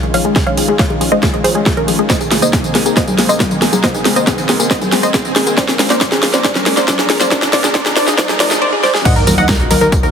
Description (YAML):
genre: uplifting trance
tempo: 138 BPM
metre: 4/4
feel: straight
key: Eb dorian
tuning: A4 = 440 Hz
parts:
  - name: wide unison pluck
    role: melody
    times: 0.0-10.1 s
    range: Db4 to Gb5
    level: -16 LUFS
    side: equal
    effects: sidechain pumping, digital delay
  - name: lush unison pad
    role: sustained chords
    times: 0.0-10.1 s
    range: C2 to Bb4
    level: -21 LUFS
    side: right 1 dB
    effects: chorus, vintage 12-bit sampler grit, sidechain pumping
  - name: analog pluck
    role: arpeggios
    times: 0.0-8.6 s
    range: C3 to Bb3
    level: -22 LUFS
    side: left 6 dB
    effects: chorus, vintage 12-bit sampler grit, sidechain pumping, ping-pong delay
  - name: big-room dance drum kit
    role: drums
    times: 0.0-10.1 s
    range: congas, crash cymbal, hi-hat, snare drum, tambourine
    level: -15 LUFS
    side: equal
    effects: sidechain pumping on hats, sidechain pumping on perc, sidechain pumping on cymbals
  - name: riser and sub drop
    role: sound effects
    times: 0.2-10.1 s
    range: none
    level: -23 LUFS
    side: right 1 dB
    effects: none
  - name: electronic kick drum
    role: drums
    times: 0.4-10.0 s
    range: none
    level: -18 LUFS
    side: equal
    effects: none
  - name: plucky unison lead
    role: second line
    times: 9.1-10.1 s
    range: Bb4 to Gb5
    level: -20 LUFS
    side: left 1 dB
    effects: phaser, sidechain pumping
  - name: plucky analog bass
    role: bass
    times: 9.2-10.1 s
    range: Eb1 to Eb2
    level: -18 LUFS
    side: equal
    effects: sidechain pumping
room: light reverb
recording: heavily compressed radio sound, high-pass filter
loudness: -11 LUFS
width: side -7 dB against mid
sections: 0.0-9.1 A section; 9.1-10.1 B section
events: build-up 0.0-9.1; drum fill 0.0-8.6, 8.8; filter sweep on synth pluck 0.0-9.1; filter sweep on synth arpeggio sound 0.0-9.1; filter sweep 0.0-9.1; drop 9.1-10.1; impact 9.1-10.1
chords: 0.0 Dbadd9; 2.1 Abadd9/C; 5.6 Bb; 9.1 Ebmadd9